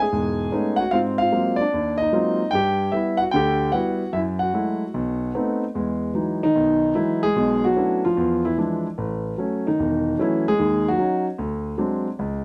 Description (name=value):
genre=solo jazz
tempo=149 BPM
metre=4/4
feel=swing 66% on 8ths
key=E major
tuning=A4 = 440 Hz
part: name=warm concert grand piano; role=solo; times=0.0-12.4 s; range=E1 to G#5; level=-22 LUFS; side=equal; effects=slapback echo
room=light reverb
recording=recorded outdoors, with no room sound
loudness=-22 LUFS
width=mono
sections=0.0-5.8 A section; 5.8-12.4 B section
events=none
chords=0.0 Amaj9#11; 0.9 G#13; 2.5 G6; 4.1 F#m9; 4.9 B7b9; 5.8 Emaj9; 7.4 Bm11; 8.2 E7b9; 9.0 A6; 10.6 D#madd11; 11.4 D7#11